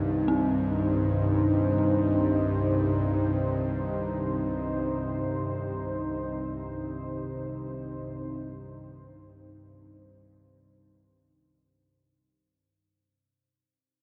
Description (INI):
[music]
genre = dark ambient drone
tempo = free time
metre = none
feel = none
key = C minor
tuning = A4 = 440 Hz
[part]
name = deep dark ambient pad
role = sustained chords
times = 0.0-12.5 s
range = C3 to C5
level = -31 LUFS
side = equal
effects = chorus, built-in reverb
[part]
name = bowed-like drone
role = drone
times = 0.0-12.6 s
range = C2 to G2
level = -33 LUFS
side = equal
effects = built-in reverb
[part]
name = dark detuned synth bell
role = arpeggios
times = 0.3-12.5 s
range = C4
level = -36 LUFS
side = equal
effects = chorus, tape echo
[sound]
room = wet huge ambient reverb, RT60 8.1 s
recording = none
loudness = -28 LUFS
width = mono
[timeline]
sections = 0.0-12.5 A section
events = fade-out 1.9-12.5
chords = 0.0 Cm